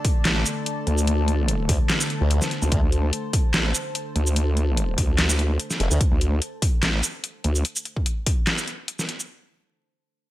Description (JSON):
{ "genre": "heavy wobble dubstep", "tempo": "146 BPM", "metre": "4/4", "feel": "swing 54% on 16ths, half-time", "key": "unclear", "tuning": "A4 = 440 Hz", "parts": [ { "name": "evolving wavetable pad", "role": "sustained chords", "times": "0.0-6.0 s", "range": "D3 to A5", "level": "-31 LUFS", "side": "left 1 dB", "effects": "chorus, built-in reverb, sidechain pumping" }, { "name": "dubstep drum kit", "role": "drums", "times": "0.0-9.3 s", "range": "handclaps, hi-hat, shaker, snare drum", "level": "-24 LUFS", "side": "equal", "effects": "none" }, { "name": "electronic kick drum", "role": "drums", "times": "0.0-8.4 s", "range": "none", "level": "-22 LUFS", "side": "equal", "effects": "none" }, { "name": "vowel-sweep wobble bass", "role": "bass", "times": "0.3-7.6 s", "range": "A1 to D2", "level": "-21 LUFS", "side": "equal", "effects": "chorus, overdrive" }, { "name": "formant-sweep wobble bass", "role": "bass", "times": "1.7-2.8, 5.8-6.0 s", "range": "F1 to D2", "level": "-20 LUFS", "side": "equal", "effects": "chorus, overdrive" } ], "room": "digital ambience", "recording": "none", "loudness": "-20 LUFS", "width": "side -15 dB against mid", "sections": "0.0-9.3 A section", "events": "drop 0.0-9.3", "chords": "0.0 D5" }